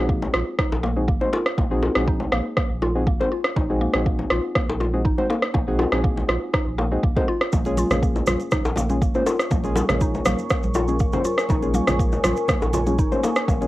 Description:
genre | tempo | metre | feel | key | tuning
afro house | 121 BPM | 4/4 | straight | unclear | A4 = 439 Hz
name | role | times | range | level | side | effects
deep mellow chord stab | stabs | 0.0-13.7 s | Ab3 to C5 | -26 LUFS | left 1 dB | chorus, sidechain pumping, cassette tape, analog delay
warm sub bass | bass | 0.0-13.7 s | Ab1 to Bb1 | -26 LUFS | equal | sidechain pumping
mallet-like synth pluck | arpeggios | 0.1-13.6 s | Bb3 to F4 | -28 LUFS | equal | chorus, sidechain pumping, cassette tape, analog delay
electronic kick drum | drums | 0.1-13.6 s | none | -23 LUFS | equal | overdrive, cassette tape
bongos | percussion | 0.2-13.6 s | none | -28 LUFS | left 2 dB | none
electronic rim click | drums | 0.3-13.5 s | none | -23 LUFS | right 1 dB | overdrive, cassette tape
dark analog pad | sustained chords | 9.4-13.7 s | Bb4 to Db6 | -30 LUFS | left 1 dB | chorus, sidechain pumping, cassette tape
cabasa | percussion | 7.5-13.7 s | none | -39 LUFS | right 4 dB | none
congas | percussion | 7.5-13.7 s | none | -30 LUFS | right 2 dB | none
room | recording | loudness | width
light reverb | home recording on cassette, faint mains hum | -19 LUFS | side -17 dB against mid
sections
0.0-13.7 A section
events
none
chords
0.0 Ab7; 7.5 Bbm7

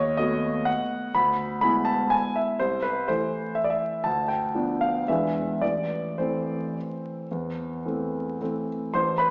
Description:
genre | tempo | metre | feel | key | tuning
classical, piano waltz | 104-129 BPM | 3/4 | rubato | A minor | A4 = 440 Hz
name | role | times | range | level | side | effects
warm concert grand piano | solo | 0.0-9.3 s | A1 to C6 | -26 LUFS | equal | none
room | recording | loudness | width
wet recital hall reverb, RT60 1.6 s | heard from further back in the room, vinyl crackle, small speaker sound | -26 LUFS | mono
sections
0.0-8.9 A section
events
none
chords
0.0 B7/D#; 1.1 E7/D; 2.6 Am/C; 4.1 Bdim/D; 5.1 E7; 5.6 Am

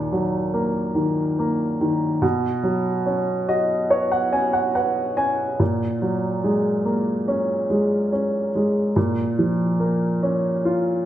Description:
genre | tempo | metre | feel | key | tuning
folk | 71 BPM | 4/4 | straight | Eb minor | A4 = 439 Hz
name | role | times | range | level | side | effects
warm upright piano | solo | 0.0-11.1 s | Eb2 to Ab5 | -19 LUFS | equal | none
room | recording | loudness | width
wet large studio reverb, RT60 1.1 s | heard from further back in the room | -19 LUFS | side -12 dB against mid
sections
0.0-11.1 A section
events
none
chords
0.0 Ebm; 2.2 Bsus2; 5.6 Gbadd9/Bb; 9.0 Bbm

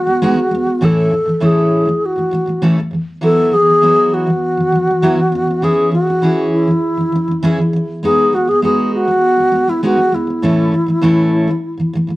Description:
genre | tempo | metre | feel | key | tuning
pop | 100 BPM | 4/4 | straight | unclear | A4 = 440 Hz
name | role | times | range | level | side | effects
alto flute | melody | 0.0-12.2 s | E4 to A4 | -14 LUFS | equal | none
picked steel-string acoustic guitar | accompaniment | 0.0-12.2 s | A2 to A4 | -15 LUFS | equal | none
room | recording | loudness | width
light reverb | worn, warbling old tape, cassette tape, warbly pitch drift | -12 LUFS | side -18 dB against mid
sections
0.0-12.2 A section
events
none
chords
0.0 G#m7; 0.8 A; 3.2 Esus2; 5.3 C#m/E; 8.0 G#m7; 10.4 A

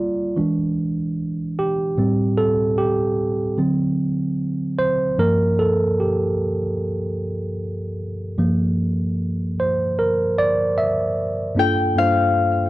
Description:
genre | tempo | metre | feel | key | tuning
R&B | 75 BPM | 4/4 | swing 62% on 16ths | G dorian | A4 = 437 Hz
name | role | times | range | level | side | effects
tine electric piano | accompaniment | 0.0-12.7 s | G2 to E5 | -19 LUFS | right 1 dB | overdrive
Celtic harp | melody | 11.6-12.7 s | F5 to G5 | -18 LUFS | left 6 dB | none
room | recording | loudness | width
light reverb | dry, close 1970s-style studio recording | -18 LUFS | side -17 dB against mid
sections
0.0-11.6 A section; 11.6-12.7 B section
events
tine electric piano solo 0.0-11.6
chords
0.4 E7; 2.0 Am7; 3.6 D7; 5.2 Gm7

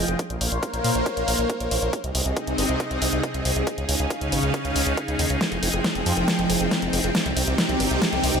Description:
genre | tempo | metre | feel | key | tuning
uplifting trance | 138 BPM | 4/4 | straight | F minor | A4 = 440 Hz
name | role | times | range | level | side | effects
supersaw pad | sustained chords | 0.0-8.4 s | C3 to G5 | -24 LUFS | equal | phaser, sidechain pumping
gritty driven synth bass | bass | 0.0-8.4 s | F1 to Bb2 | -26 LUFS | equal | sidechain pumping
big-room dance drum kit | drums | 0.1-8.4 s | hi-hat, snare drum | -25 LUFS | equal | none
electronic kick drum | drums | 0.2-8.1 s | none | -31 LUFS | equal | high-pass filter on kick
riser | sound effects | 6.9-8.4 s | none | -37 LUFS | right 2 dB | none
room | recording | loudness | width
moderate digital room reverb, RT60 1.2 s, digital ambience | none | -21 LUFS | side -6 dB against mid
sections
0.0-8.4 A section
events
build-up 0.0-8.4; drum fill 5.4-8.4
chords
0.2 Bbmadd9; 1.9 Ab; 3.7 Dbadd9; 5.4 Fm7; 7.1 Cm

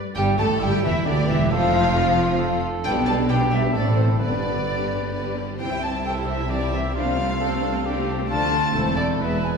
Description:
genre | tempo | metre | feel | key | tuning
quick classical-period movement for symphony orchestra | 133 BPM | 3/4 | straight | unclear | A4 = 440 Hz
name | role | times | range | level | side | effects
warm chamber violin section | melody | 0.2-9.6 s | C5 to A5 | -30 LUFS | left 3 dB | none
mellow cor anglais | second line | 0.2-9.6 s | E4 to B4 | -30 LUFS | right 3 dB | none
mellow hollow silver concert flute | second line | 0.2-9.5 s | C5 to A5 | -27 LUFS | left 1 dB | none
rich chamber violin section | second line | 0.2-9.6 s | C4 to E5 | -32 LUFS | left 4 dB | none
rich studio viola section | accompaniment | 0.2-9.6 s | D3 to E4 | -28 LUFS | right 1 dB | none
dark French horn section | sustained chords | 0.2-9.4 s | D3 to D4 | -30 LUFS | left 2 dB | none
warm chamber cello section | bass | 0.2-9.6 s | C2 to B2 | -28 LUFS | right 1 dB | none
warm chamber double bass section | bass | 0.2-9.6 s | E1 to D2 | -26 LUFS | right 1 dB | none
room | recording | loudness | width
wet scoring stage reverb, RT60 2.0 s | heard from further back in the room | -19 LUFS | side -5 dB against mid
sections
0.2-9.6 A section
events
none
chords
0.2 A7sus4; 1.5 F; 2.9 G/B; 3.7 Am; 4.2 G; 5.6 C; 7.0 Dm7/C; 8.3 Dm; 8.8 Am/E

